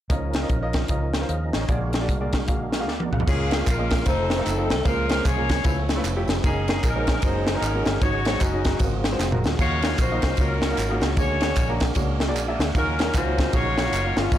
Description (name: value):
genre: uptempo gospel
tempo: 152 BPM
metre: 4/4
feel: swing 62% on 8ths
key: Db major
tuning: A4 = 440 Hz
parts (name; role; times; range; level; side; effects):
- clear baby grand piano; accompaniment; 0.1-14.4 s; Ab2 to D6; -29 LUFS; right 1 dB; none
- tonewheel organ; sustained chords; 0.1-14.4 s; E3 to Ab5; -33 LUFS; right 3 dB; slow rotary speaker, overdrive, chorus vibrato
- vintage muted fingered electric bass; bass; 0.1-14.4 s; F1 to Eb2; -27 LUFS; equal; none
- crisp fusion drum kit; drums; 0.1-14.4 s; crash cymbal, hi-hat, kick drum, ride cymbal, snare drum, toms; -24 LUFS; equal; none
- warm saxophone section; melody; 3.3-14.4 s; C4 to Db5; -26 LUFS; left 2 dB; none
- tambourine and handclaps; percussion; 3.3-14.4 s; none; -37 LUFS; right 4 dB; none
room: light reverb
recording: blown-out, overdriven recording, overdrive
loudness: -20 LUFS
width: side -12 dB against mid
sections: 0.1-3.3 A section; 3.3-14.4 B section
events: drum fill 2.9-3.3, 9.2-9.6; tonewheel organ fill 12.2-12.7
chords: 0.1 Db69; 1.7 Bb7b13; 3.3 Db6; 4.1 F7; 4.9 Bbm9/Db; 5.7 Db7alt; 6.4 Gb69; 8.0 Ab7sus4; 8.8 Ab13; 9.6 Ebm9; 11.2 Bb7alt; 12.7 Ebm9